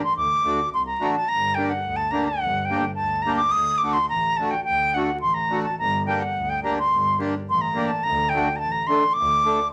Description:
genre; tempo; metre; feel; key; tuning
klezmer; 106 BPM; 2/4; straight; unclear; A4 = 440 Hz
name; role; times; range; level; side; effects
bright reedy concert flute; melody; 0.0-9.7 s; F#5 to Eb6; -24 LUFS; equal; none
accordion; accompaniment; 0.0-9.6 s; A3 to A4; -28 LUFS; equal; none
warm double bass; bass; 0.2-9.5 s; G1 to D2; -34 LUFS; equal; none
room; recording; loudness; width
moderate studio reverb, RT60 0.7 s; vinyl crackle; -23 LUFS; mono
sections
0.0-1.3 A section; 1.3-9.7 B section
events
none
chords
0.2 D; 1.3 Gm; 3.6 D; 5.8 Gm; 8.1 D5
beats
| 0.17 0.74 | 1.30 1.86 | 2.43 2.99 | 3.55 4.12 | 4.68 5.24 | 5.81 6.37 | 6.93 7.50 | 8.06 8.62 | 9.18

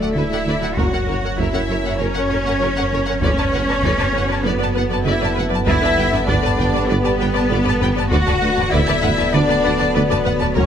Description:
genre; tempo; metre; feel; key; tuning
cinematic, hybrid orchestral and electronic film score; 98 BPM; 4/4; straight; unclear; A4 = 440 Hz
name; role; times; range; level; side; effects
rich symphonic violin section; melody; 0.0-10.6 s; A#4 to A5; -28 LUFS; left 3 dB; none
warm symphonic violin section; second line; 0.0-10.7 s; A4 to F#5; -26 LUFS; left 2 dB; none
warm symphonic viola section; accompaniment; 0.0-10.6 s; F#4 to D5; -27 LUFS; left 1 dB; none
mellow French horn section; sustained chords; 0.0-10.7 s; A4 to D5; -27 LUFS; left 4 dB; none
mellow trombone section; sustained chords; 0.0-10.7 s; F#3 to C#4; -26 LUFS; right 3 dB; none
tight sequenced synth; arpeggios; 0.0-10.7 s; D3 to G4; -28 LUFS; left 1 dB; none
pure sine sub bass; bass; 0.0-10.7 s; D1 to G1; -28 LUFS; equal; none
rich studio double bass section; bass; 0.0-10.6 s; F#1 to G2; -26 LUFS; right 2 dB; none
warm symphonic cello section; bass; 0.0-10.7 s; A3 to F#4; -22 LUFS; equal; none
mellow tuba; bass; 0.2-10.6 s; F#1 to D2; -26 LUFS; right 4 dB; none
solo taiko drums; drums; 0.8-10.7 s; none; -23 LUFS; equal; none
room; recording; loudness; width
moderate scoring stage reverb, RT60 1.6 s; none; -16 LUFS; side -8 dB against mid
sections
0.0-10.7 A section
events
none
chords
0.0 D; 0.8 F#; 3.2 D6/F#; 5.7 Gadd9; 8.1 D6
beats
0.16 | 0.77 1.39 2.00 2.61 | 3.22 3.83 4.45 5.06 | 5.67 6.28 6.90 7.51 | 8.12 8.73 9.35 9.96 | 10.57

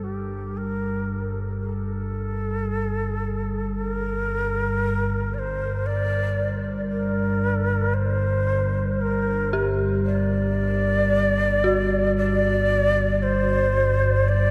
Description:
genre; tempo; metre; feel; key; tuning
dark ambient drone; 57 BPM; 4/4; straight; G harmonic minor; A4 = 440 Hz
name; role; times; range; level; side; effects
breathy mellow shakuhachi; melody; 0.0-14.5 s; G4 to D5; -27 LUFS; equal; tape echo
dark detuned synth bell; arpeggios; 0.0-14.5 s; D4 to G4; -31 LUFS; equal; chorus, tremolo, tape echo
analog drone; drone; 0.0-14.5 s; G1 to G2; -26 LUFS; equal; subtle chorus
room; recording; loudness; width
wet huge ambient reverb, RT60 8.5 s; none; -23 LUFS; mono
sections
0.0-14.5 A section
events
fade-in on synth drone 0.0-14.5; fade-in on synth bell 0.0-14.5; fade-in on shakuhachi 0.0-14.5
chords
0.0 Gm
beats
0.58 | 1.63 2.69 3.74 4.79 | 5.84 6.89 7.95 9.00 | 10.05 11.11 12.16 13.21 | 14.26

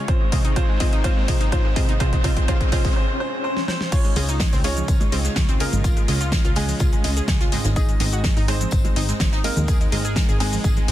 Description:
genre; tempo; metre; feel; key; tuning
progressive house; 125 BPM; 4/4; straight; Db major; A4 = 439 Hz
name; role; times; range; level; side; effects
bright baby grand piano; melody; 0.0-10.9 s; Ab3 to Eb5; -29 LUFS; right 1 dB; sidechain pumping, tape echo
supersaw pad; sustained chords; 0.0-10.9 s; Ab2 to F4; -34 LUFS; equal; sidechain pumping
analog pluck; arpeggios; 0.0-10.9 s; Ab3 to Ab4; -30 LUFS; equal; chorus, sidechain pumping, digital delay
riser and swell; sound effects; 0.2-3.9 s; none; -32 LUFS; left 2 dB; none
big-room dance drum kit; drums; 0.1-10.9 s; crash cymbal, hi-hat, shaker, snare drum; -28 LUFS; left 1 dB; sidechain pumping on hats, sidechain pumping on cymbals, sidechain pumping on perc
electronic kick drum; drums; 0.1-10.7 s; none; -20 LUFS; equal; none
wide unison pluck; stabs; 0.3-10.9 s; Ab2 to Eb5; -29 LUFS; right 2 dB; sidechain pumping, digital delay
jazz brush drum kit; drums; 3.9-10.9 s; hi-hat, snare drum, tambourine; -35 LUFS; left 1 dB; high-pass filter on hats, soft clipping on snare, high-pass filter on snare, high-pass filter on perc, high-pass filter on room
plucky analog bass; bass; 4.2-10.9 s; Ab1 to Eb2; -24 LUFS; equal; sidechain pumping
congas and bongos; percussion; 4.2-10.9 s; none; -35 LUFS; right 5 dB; none
room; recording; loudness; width
studio reverb; dense, heavily limited modern master; -18 LUFS; side -13 dB against mid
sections
0.0-3.9 A section; 3.9-10.9 B section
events
build-up 0.0-3.9; drum fill 0.0-3.0, 3.6-3.9; break 3.0-3.9; swell 3.0-3.9; drop 3.9-10.9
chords
0.1 Ab; 3.9 Dbadd9; 7.8 Ab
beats
| 0.08 0.56 1.04 1.52 | 2.00 2.48 2.96 3.44 | 3.92 4.40 4.88 5.36 | 5.84 6.32 6.80 7.28 | 7.76 8.24 8.72 9.20 | 9.68 10.16 10.64

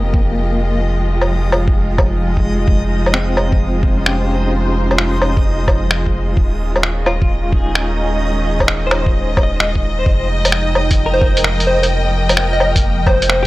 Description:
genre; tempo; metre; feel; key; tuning
future garage; 130 BPM; 4/4; swing 67% on 16ths; F minor; A4 = 439 Hz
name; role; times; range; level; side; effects
clean electric guitar; accompaniment; 0.0-13.5 s; Ab3 to Eb5; -24 LUFS; left 2 dB; tremolo, sidechain pumping, low-pass filter, tape echo
rich studio string section; sustained chords; 0.0-13.5 s; Eb3 to G5; -21 LUFS; equal; sidechain pumping
soft dub sub bass; bass; 0.0-13.5 s; Eb1 to F1; -18 LUFS; equal; tube saturation
backwards swelling texture; texture; 0.0-13.5 s; Bb3 to Eb5; -27 LUFS; right 2 dB; built-in reverb
electronic kick drum; drums; 0.1-13.2 s; none; -16 LUFS; equal; none
lo-fi sampler-style drum kit; drums; 1.2-13.4 s; finger snaps, hi-hat, woodblock; -16 LUFS; equal; none
plucky unison lead; melody; 11.1-13.5 s; C5 to Eb5; -18 LUFS; equal; tape echo
room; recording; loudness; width
little or no reverb; dry, gritty hardware recording; -13 LUFS; side -18 dB against mid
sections
0.0-13.5 A section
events
filter sweep on clean electric guitar 0.0-13.5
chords
0.0 Fm7; 2.7 Fm9; 6.4 Eb7sus4; 10.1 Fm7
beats
0.37 | 0.83 1.29 1.76 2.22 | 2.68 3.14 3.60 4.07 | 4.53 4.99 5.45 5.91 | 6.37 6.83 7.29 7.76 | 8.22 8.68 9.14 9.60 | 10.06 10.53 10.99 11.45 | 11.91 12.37 12.83 13.29

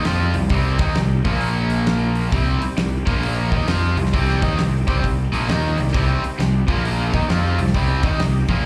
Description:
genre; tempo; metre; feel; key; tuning
blues rock power trio and southern rock; 133 BPM; 4/4; swing 64% on 8ths; C minor; A4 = 440 Hz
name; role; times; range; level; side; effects
tonewheel organ; sustained chords; 0.0-8.7 s; F3 to Bb4; -35 LUFS; equal; none
raw garage guitar; riff; 0.0-8.7 s; Bb2 to F4; -24 LUFS; equal; overdrive, slapback echo
fuzz fingered electric bass; bass; 0.0-8.7 s; Bb1 to F2; -23 LUFS; equal; overdrive
big rock drum kit; drums; 0.0-8.6 s; hi-hat, kick drum, snare drum; -26 LUFS; equal; none
room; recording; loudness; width
studio reverb; live gig heard through the venue's PA, club reverb; -19 LUFS; mono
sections
0.0-8.7 A section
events
none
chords
0.0 Cm; 1.2 Bb5; 2.3 Cm; 3.0 Bb5; 3.5 Cm; 6.6 Bb5; 7.1 Cm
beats
0.05 | 0.51 0.96 1.42 1.87 | 2.32 2.78 3.23 3.68 | 4.14 4.59 5.04 5.49 | 5.94 6.40 6.85 7.30 | 7.75 8.20 8.65

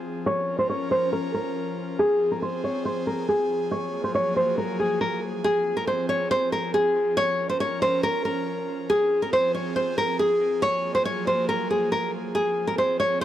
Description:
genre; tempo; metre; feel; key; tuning
hip hop; 139 BPM; 4/4; half-time; F phrygian; A4 = 438 Hz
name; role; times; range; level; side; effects
airy breathy pad; sustained chords; 0.0-13.2 s; F3 to Bb4; -31 LUFS; equal; chorus
nylon-string guitar; melody; 0.3-13.2 s; Ab4 to Db5; -23 LUFS; equal; low-pass filter
room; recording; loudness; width
light reverb, small room ambience; dry, gritty hardware recording; -22 LUFS; side -12 dB against mid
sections
0.0-13.2 A section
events
break 0.0; filter sweep on nylon-string guitar 0.0-5.4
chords
0.3 Bbm/F; 2.0 Fm; 3.7 Gbadd9/F; 5.4 Fm; 7.2 Bbm/F; 8.9 Fm; 10.6 Gbadd9/F; 12.3 Fm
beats
| 0.26 0.70 1.13 1.56 | 1.99 2.42 2.85 3.29 | 3.72 4.15 4.58 5.01 | 5.44 5.88 6.31 6.74 | 7.17 7.60 8.03 8.46 | 8.90 9.33 9.76 10.19 | 10.62 11.05 11.49 11.92 | 12.35 12.78 13.21

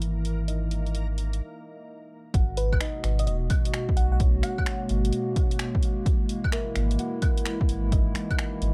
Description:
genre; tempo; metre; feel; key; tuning
future garage; 129 BPM; 4/4; swing 66% on 16ths; G# minor; A4 = 440 Hz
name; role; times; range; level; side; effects
muted felt-like synth keys; accompaniment; 0.0-8.7 s; A#4 to F#5; -41 LUFS; equal; chorus, vintage 12-bit sampler grit, sidechain pumping, tape echo
warbly tape-like pad; sustained chords; 0.0-8.7 s; B2 to A#4; -34 LUFS; equal; chorus, built-in reverb, sidechain pumping
warm sub bass; bass; 0.0-8.7 s; D#1 to B1; -28 LUFS; equal; tube saturation
deep house drum kit; drums; 0.0-8.7 s; claves, finger snaps, hi-hat; -36 LUFS; equal; overdrive
backwards swelling texture; texture; 0.0-1.4 s; A#3 to A#4; -48 LUFS; equal; built-in reverb
electronic kick drum; drums; 2.3-8.4 s; none; -27 LUFS; equal; overdrive
bell-like FM electric piano; melody; 2.6-4.8 s; B4 to F#5; -39 LUFS; equal; chorus, vintage 12-bit sampler grit, dub echo
room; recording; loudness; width
digital ambience; dark, warm production; -26 LUFS; mono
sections
0.0-2.3 A section; 2.3-8.7 B section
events
filter sweep on synth keys 0.0-2.3; break 1.4-2.3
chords
0.0 Emaj7#11/G#; 2.3 G#m9; 6.1 F#13/G#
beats
0.01 | 0.48 0.94 1.41 1.88 | 2.34 2.81 3.27 3.73 | 4.20 4.67 5.13 5.60 | 6.06 6.53 6.99 7.46 | 7.92 8.39

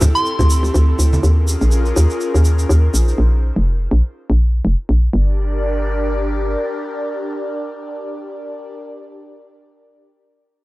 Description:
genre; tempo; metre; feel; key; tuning
deep house; 123 BPM; 4/4; swing 56% on 16ths; G dorian; A4 = 440 Hz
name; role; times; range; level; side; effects
airy breathy pad; sustained chords; 0.0-8.8 s; C4 to D5; -24 LUFS; equal; chorus
hollow knocking FM bass; bass; 0.0-6.6 s; F1 to Eb2; -14 LUFS; equal; tube saturation
bongos and congas; percussion; 0.0-1.2 s; none; -22 LUFS; right 1 dB; none
egg shaker; percussion; 0.0-3.2 s; none; -28 LUFS; right 1 dB; none
room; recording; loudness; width
digital ambience; dry, gritty hardware recording, cassette tape; -14 LUFS; side -19 dB against mid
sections
0.0-5.1 A section; 5.1-9.0 B section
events
drop 0.0-5.1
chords
0.0 D9sus4; 1.2 Eb9sus4; 2.9 Bb5; 5.1 Gm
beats
0.26 0.74 | 1.23 1.72 2.21 2.70 | 3.18 3.67 4.16 4.65 | 5.13 5.62 6.11 6.60 | 7.09 7.57 8.06 8.55

